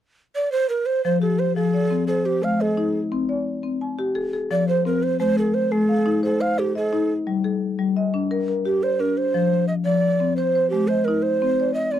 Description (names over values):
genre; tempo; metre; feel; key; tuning
southern african traditional; 116 BPM (dotted quarters); 12/8; straight; F equiheptatonic; A4 = 442 Hz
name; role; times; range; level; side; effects
breathy mellow Native American-style cedar flute; melody; 0.4-12.0 s; G4-32c to F5; -22 LUFS; right 4 dB; none
marimba with medium mallets; arpeggios; 1.0-12.0 s; F3 to Ab5+43c; -21 LUFS; left 3 dB; none
room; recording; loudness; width
moderate booth ambience, RT60 0.3 s; dry, close 1970s-style studio recording; -19 LUFS; side -11 dB against mid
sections
0.0-1.0 A section; 1.0-12.0 B section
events
none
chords
0.0 N.C.; 1.0 Fm; 2.1 Ab; 3.1 C5; 4.2 Fm; 5.2 Ab; 7.3 Gm; 9.3 F5; 10.4 Ab; 11.4 C5